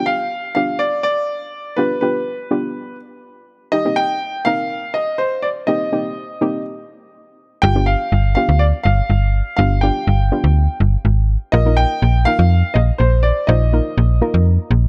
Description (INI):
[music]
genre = pop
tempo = 123 BPM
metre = 4/4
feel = straight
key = unclear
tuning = A4 = 439 Hz
[part]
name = warm grand piano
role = melody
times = 0.0-14.4 s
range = B4 to G5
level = -22 LUFS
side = equal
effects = dub echo
[part]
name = soft round pluck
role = accompaniment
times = 0.0-14.7 s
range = Bb3 to C5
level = -24 LUFS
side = equal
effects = chorus
[part]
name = slap-like FM bass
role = bass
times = 7.6-14.9 s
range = G1 to F2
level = -16 LUFS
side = equal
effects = none
[sound]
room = little or no reverb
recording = none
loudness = -17 LUFS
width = mono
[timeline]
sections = 0.0-14.9 A section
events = none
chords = 0.0 G7; 3.7 Cm7; 7.6 G7; 11.5 Bbsus4